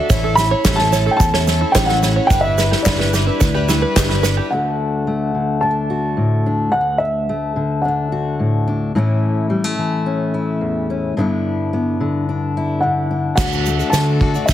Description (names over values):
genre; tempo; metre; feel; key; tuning
indie folk with a building arrangement; 108 BPM; 4/4; straight; D major; A4 = 435 Hz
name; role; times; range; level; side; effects
dark upright piano; melody; 0.0-8.6, 12.8-14.5 s; D5 to B5; -20 LUFS; equal; none
picked plugged-in twelve-string acoustic guitar; accompaniment; 0.0-4.5, 13.4-14.5 s; A2 to B4; -23 LUFS; left 8 dB; none
open-back banjo; arpeggios; 0.0-4.5 s; E4 to C#5; -22 LUFS; right 7 dB; analog delay
fingered electric bass; bass; 0.1-4.4, 13.4-14.5 s; G1 to D3; -19 LUFS; equal; none
unplugged drum kit; drums; 0.1-4.3, 13.4-14.5 s; crash cymbal, kick drum, snare drum; -19 LUFS; right 1 dB; none
egg shaker; percussion; 0.1-4.4, 13.4-14.5 s; none; -30 LUFS; right 19 dB; none
group handclap; percussion; 0.7-4.1 s; none; -27 LUFS; left 8 dB; none
fingerpicked steel-string acoustic guitar; accompaniment; 4.5-14.5 s; D2 to F#4; -18 LUFS; left 2 dB; none
room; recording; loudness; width
light reverb, small room ambience; heavily compressed radio sound, multiband compression; -15 LUFS; side -12 dB against mid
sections
0.0-4.5 A section; 4.5-13.4 B section; 13.4-14.5 C section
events
build-up 13.4-14.5; drum fill 13.4-14.5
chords
0.1 A; 2.3 G6; 4.5 D; 8.9 A; 11.2 G6; 13.4 D